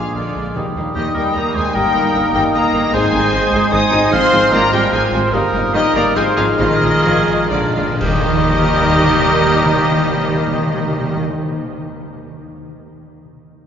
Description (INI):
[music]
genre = classical, dramatic, fast romantic movement for symphony orchestra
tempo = 118-154 BPM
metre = 3/4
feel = rubato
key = Eb major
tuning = A4 = 440 Hz
[part]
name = warm symphonic violin section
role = melody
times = 0.0-11.2 s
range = D5 to Eb6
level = -22 LUFS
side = left 4 dB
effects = none
[part]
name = clear oboe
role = second line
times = 0.0-11.2 s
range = F4 to Ab5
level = -22 LUFS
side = right 1 dB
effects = none
[part]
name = dark clarinet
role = second line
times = 0.0-11.2 s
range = D4 to Eb5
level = -25 LUFS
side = left 1 dB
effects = none
[part]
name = mellow hollow silver concert flute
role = second line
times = 0.0-11.2 s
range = D6 to F6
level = -23 LUFS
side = equal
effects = none
[part]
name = warm symphonic violin section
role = second line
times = 0.0-11.2 s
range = Bb3 to Ab4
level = -28 LUFS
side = left 1 dB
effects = none
[part]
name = mellow bassoon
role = accompaniment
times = 0.0-11.2 s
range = G3 to C4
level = -25 LUFS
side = right 1 dB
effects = none
[part]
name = rich symphonic viola section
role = accompaniment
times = 0.0-11.2 s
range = Eb3 to Bb3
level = -27 LUFS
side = right 1 dB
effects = none
[part]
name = mellow French horn section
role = sustained chords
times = 0.0-11.2 s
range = G3 to G4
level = -26 LUFS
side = left 1 dB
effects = none
[part]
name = concert harp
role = arpeggios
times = 0.0-11.9 s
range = G2 to Bb5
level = -26 LUFS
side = left 5 dB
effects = none
[part]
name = clear trumpet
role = stabs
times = 0.0-11.2 s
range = G4 to C5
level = -23 LUFS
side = right 2 dB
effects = none
[part]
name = rich symphonic cello section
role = bass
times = 0.0-11.2 s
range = D3 to Eb4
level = -22 LUFS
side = right 2 dB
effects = none
[part]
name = rich symphonic double bass section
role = bass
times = 0.0-11.2 s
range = G1 to Eb2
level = -25 LUFS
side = right 2 dB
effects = none
[part]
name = timpani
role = percussion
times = 0.6-1.1, 6.6-11.2 s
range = Bb2 to Eb3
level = -23 LUFS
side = equal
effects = none
[part]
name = cymbal swell, clash cymbals and concert bass drum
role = percussion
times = 5.3-8.9 s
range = none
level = -28 LUFS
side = equal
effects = none
[sound]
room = wet cathedral reverb, RT60 4.7 s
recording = recorded in a church or concert hall, nothing above 7.5 kHz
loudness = -13 LUFS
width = side -8 dB against mid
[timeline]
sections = 0.0-8.0 A section; 8.0-10.9 B section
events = slowing down 4.7-8.0; timpani fill 7.5-8.0; band accent 8.0-8.5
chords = 0.0 Bb7; 0.6 Eb; 1.8 Eb/G; 2.9 Ab; 4.1 Fm/Ab; 5.3 Eb/G; 6.2 Fm/Ab; 6.6 Bb7sus4; 7.5 Bb7; 8.0 Eb